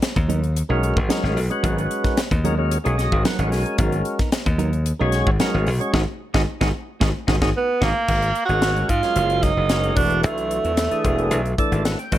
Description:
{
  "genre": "electric jazz fusion",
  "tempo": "112 BPM",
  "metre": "4/4",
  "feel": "straight",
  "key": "unclear",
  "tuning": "A4 = 439 Hz",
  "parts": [
    { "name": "clean electric guitar", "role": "stabs", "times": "0.0-7.9 s", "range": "F#3 to A#4", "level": "-29 LUFS", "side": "right 5 dB", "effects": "wide subtle chorus, slapback echo, plate reverb" },
    { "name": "crisp fusion drum kit", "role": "drums", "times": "0.0-12.2 s", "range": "crash cymbal, hi-hat, kick drum, snare drum", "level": "-23 LUFS", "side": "left 1 dB", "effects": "none" },
    { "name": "glassy slap bass", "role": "bass", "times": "0.2-12.2 s", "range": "E1 to G#2", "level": "-22 LUFS", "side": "equal", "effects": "none" },
    { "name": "percussive tonewheel organ", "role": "accompaniment", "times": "0.7-12.2 s", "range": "E3 to G#5", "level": "-25 LUFS", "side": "left 1 dB", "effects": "slow rotary speaker, plate reverb" },
    { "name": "clear tenor saxophone", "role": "melody", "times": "7.6-11.8 s", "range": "A3 to F#4", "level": "-21 LUFS", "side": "right 3 dB", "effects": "plate reverb" }
  ],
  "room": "light reverb",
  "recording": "none",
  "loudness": "-18 LUFS",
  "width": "side -13 dB against mid",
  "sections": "0.0-8.1 A section; 8.1-12.2 B section",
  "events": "tonewheel organ fill 2.7-3.8, 11.3-12.2; band accent 5.9-8.1; drum fill 7.8",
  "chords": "0.0 G#m9; 8.1 G#13sus4; 10.0 E9sus4",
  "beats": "0.02 0.56 1.10 | 1.64 2.17 2.71 3.25 | 3.79 4.33 4.86 5.40 | 5.94 6.47 7.01 7.55 | 8.09 8.62 9.16 9.70 | 10.24 10.78 11.31 11.85"
}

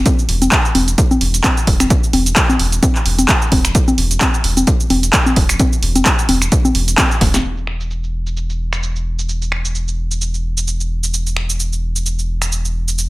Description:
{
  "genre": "acid house",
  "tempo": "130 BPM",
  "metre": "4/4",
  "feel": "swing 56% on 16ths",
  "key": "unclear",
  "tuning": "A4 = 440 Hz",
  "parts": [
    { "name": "electronic kick drum", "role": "drums", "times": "0.1-7.3 s", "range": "none", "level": "-15 LUFS", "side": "equal", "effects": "none" },
    { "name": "punchy analog drum machine", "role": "drums", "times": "0.1-13.1 s", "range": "congas, finger snaps, handclaps, hi-hat, shaker, snare drum", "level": "-16 LUFS", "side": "equal", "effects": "low-pass filter on perc, low-pass filter on hats, low-pass filter on snare, low-pass filter on room" },
    { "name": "round analog bass", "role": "bass", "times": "0.3-13.1 s", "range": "E1", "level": "-19 LUFS", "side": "equal", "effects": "sidechain pumping" }
  ],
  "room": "little or no reverb",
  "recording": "none",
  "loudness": "-13 LUFS",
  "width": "side -20 dB against mid",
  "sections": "0.0-7.4 A section; 7.4-13.1 B section",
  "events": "drum fill 7.2",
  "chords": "none",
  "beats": "| 0.06 0.52 0.98 1.44 | 1.90 2.37 2.83 3.29 | 3.75 4.21 4.67 5.13 | 5.60 6.06 6.52 6.98 | 7.44 7.90 8.37 8.83 | 9.29 9.75 10.21 10.67 | 11.13 11.60 12.06 12.52 | 12.98"
}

